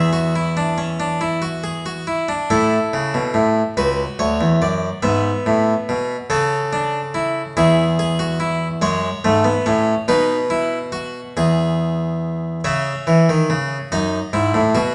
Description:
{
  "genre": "classical, baroque-style 3-part fugue for harpsichord",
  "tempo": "47 BPM (dotted quarters)",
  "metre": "6/8",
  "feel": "straight",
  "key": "unclear",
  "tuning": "A4 = 439 Hz",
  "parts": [
    { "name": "harpsichord", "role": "solo", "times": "0.0-14.9 s", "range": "C#2 to E5", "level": "-19 LUFS", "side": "equal", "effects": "none" }
  ],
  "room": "wet stone room reverb, RT60 1.2 s",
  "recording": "nothing above 10.8 kHz",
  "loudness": "-19 LUFS",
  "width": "mono",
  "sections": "0.0-2.5 A section; 2.5-12.6 B section; 12.6-14.9 C section",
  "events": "none",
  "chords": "0.0 E; 2.5 A; 3.8 Bm; 5.0 E/G#; 6.3 A/C#; 7.6 E; 8.8 F#m; 10.1 B; 11.4 E; 12.6 C#m; 13.9 D#dim/F#"
}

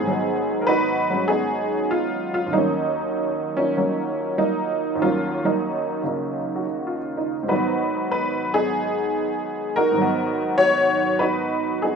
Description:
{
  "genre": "solo jazz",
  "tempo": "97 BPM",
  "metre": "4/4",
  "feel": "swing 69% on 8ths",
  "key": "unclear",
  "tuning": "A4 = 442 Hz",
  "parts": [
    { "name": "honky-tonk upright piano", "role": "solo", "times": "0.0-12.0 s", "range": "Eb2 to Db5", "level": "-20 LUFS", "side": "equal", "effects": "none" }
  ],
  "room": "moderate club reverb, RT60 0.8 s",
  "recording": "minimal, uncompressed stereo recording",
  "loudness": "-20 LUFS",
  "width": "side -6 dB against mid",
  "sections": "0.0-12.0 A section",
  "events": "none",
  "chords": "0.1 Abm7; 2.5 Ebm7; 7.5 Abm7"
}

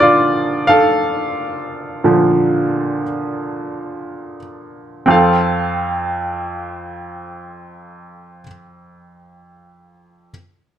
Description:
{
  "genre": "pop",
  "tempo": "free time",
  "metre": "none",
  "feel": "none",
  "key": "F major",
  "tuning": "A4 = 440 Hz",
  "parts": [
    { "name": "bright upright piano", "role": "solo", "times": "0.0-10.3 s", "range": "F2 to F5", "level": "-15 LUFS", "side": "right 1 dB", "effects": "none" }
  ],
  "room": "moderate large studio reverb, RT60 0.9 s",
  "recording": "none",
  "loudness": "-14 LUFS",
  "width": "side -10 dB against mid",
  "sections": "0.0-5.1 A section; 5.1-7.8 B section",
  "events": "upright piano solo 0.0-5.1",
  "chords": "0.0 Bb; 5.1 F"
}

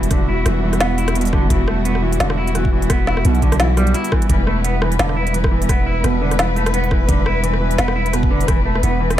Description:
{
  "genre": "half-time drum and bass",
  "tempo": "172 BPM",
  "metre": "4/4",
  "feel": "swing 56% on 16ths, half-time",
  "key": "E minor",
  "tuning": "A4 = 439 Hz",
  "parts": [
    { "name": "warm studio cello section", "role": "sustained chords", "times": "0.0-9.2 s", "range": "G3 to B4", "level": "-23 LUFS", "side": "left 1 dB", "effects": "sidechain pumping" },
    { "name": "semi-hollow electric guitar", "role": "arpeggios", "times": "0.0-9.2 s", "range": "B2 to E4", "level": "-22 LUFS", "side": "right 3 dB", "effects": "ping-pong delay" },
    { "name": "long sustained 808-style bass", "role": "bass", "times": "0.0-9.2 s", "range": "E1 to B1", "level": "-19 LUFS", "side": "equal", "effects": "none" },
    { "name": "organic electronic drum kit", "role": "drums", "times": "0.0-9.2 s", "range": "hi-hat, rim click, snare drum", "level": "-22 LUFS", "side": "left 1 dB", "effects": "overdrive" },
    { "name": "electronic kick drum", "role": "drums", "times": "0.1-8.6 s", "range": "none", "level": "-18 LUFS", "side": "equal", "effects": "none" }
  ],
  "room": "light reverb",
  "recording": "none",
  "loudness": "-15 LUFS",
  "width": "side -12 dB against mid",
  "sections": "0.0-9.2 A section",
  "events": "none",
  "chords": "0.0 Em"
}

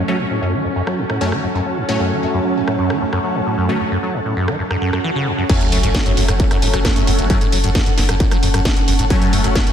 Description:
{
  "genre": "driving peak-time techno",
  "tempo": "133 BPM",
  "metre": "4/4",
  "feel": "straight",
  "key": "F# minor",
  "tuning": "A4 = 440 Hz",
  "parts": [
    { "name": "acid bass, saw", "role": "riff", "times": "0.0-9.7 s", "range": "F#1 to F#3", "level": "-21 LUFS", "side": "equal", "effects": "sidechain pumping, ping-pong delay" },
    { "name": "supersaw stab", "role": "stabs", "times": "0.0-9.7 s", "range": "F#3 to C#4", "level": "-22 LUFS", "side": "left 1 dB", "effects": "phaser, sidechain pumping, ping-pong delay" },
    { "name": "swarming drone", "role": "drone", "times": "0.0-5.5 s", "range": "F#3 to C#4", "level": "-27 LUFS", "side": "equal", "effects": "built-in reverb, lush chorus, sidechain pumping" },
    { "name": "downlifter, swell and sub drop", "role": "sound effects", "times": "0.0-7.3 s", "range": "none", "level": "-29 LUFS", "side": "right 1 dB", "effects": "none" },
    { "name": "ethereal airy pad", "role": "texture", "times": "0.0-9.7 s", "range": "C#4 to A5", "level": "-24 LUFS", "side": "right 2 dB", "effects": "ensemble chorus, built-in reverb, phaser, sidechain pumping" },
    { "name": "techno drum kit", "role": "drums", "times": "0.9-9.7 s", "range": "crash cymbal, hi-hat, ride cymbal, rim click, snare drum", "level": "-23 LUFS", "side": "right 1 dB", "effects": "sidechain pumping on hats, sidechain pumping on cymbals" },
    { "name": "electronic kick drum", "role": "drums", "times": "5.5-9.6 s", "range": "none", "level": "-17 LUFS", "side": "equal", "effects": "distortion" },
    { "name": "saturated sub bass", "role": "bass", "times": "5.7-9.6 s", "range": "F#1", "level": "-21 LUFS", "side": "equal", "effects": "overdrive, sidechain pumping, low-pass filter" }
  ],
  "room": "moderate lush hall reverb, RT60 1.7 s, digital ambience",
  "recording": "dreamy mix soaked in reverb",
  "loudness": "-15 LUFS",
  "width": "side -9 dB against mid",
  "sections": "0.0-5.5 A section; 5.5-9.7 B section",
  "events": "filter sweep on acid bass 0.0-5.5; swell 4.7-5.5; drop 5.5-9.7; impact 5.5-7.3",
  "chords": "0.0 F#m"
}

